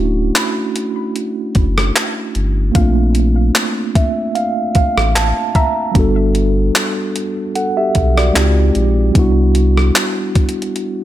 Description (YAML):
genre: contemporary R&B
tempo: 75 BPM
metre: 4/4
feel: swing 54% on 16ths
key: unclear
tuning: A4 = 442 Hz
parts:
  - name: mellow tine electric piano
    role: accompaniment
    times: 0.0-11.0 s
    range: G3 to Bb5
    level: -17 LUFS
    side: right 2 dB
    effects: medium stereo tremolo
  - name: warm sub bass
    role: bass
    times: 0.0-9.9 s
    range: D1 to C#2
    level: -14 LUFS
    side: left 1 dB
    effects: none
  - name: crisp 8-bit digital drum machine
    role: drums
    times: 0.4-11.0 s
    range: handclaps, hi-hat, kick drum, rim click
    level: -16 LUFS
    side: equal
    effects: overdrive
  - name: soft round pluck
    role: texture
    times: 0.4-6.3 s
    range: E5 to B5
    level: -28 LUFS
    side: right 3 dB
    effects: chorus, ping-pong delay
room: digital ambience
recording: none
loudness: -13 LUFS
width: side -13 dB against mid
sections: 0.0-11.0 A section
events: tine electric piano fill 3.6-6.0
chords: 0.0 Dmaj9; 2.8 Bbmaj7; 6.0 Gmaj9; 8.4 C#maj9#11; 9.2 Cmaj9#11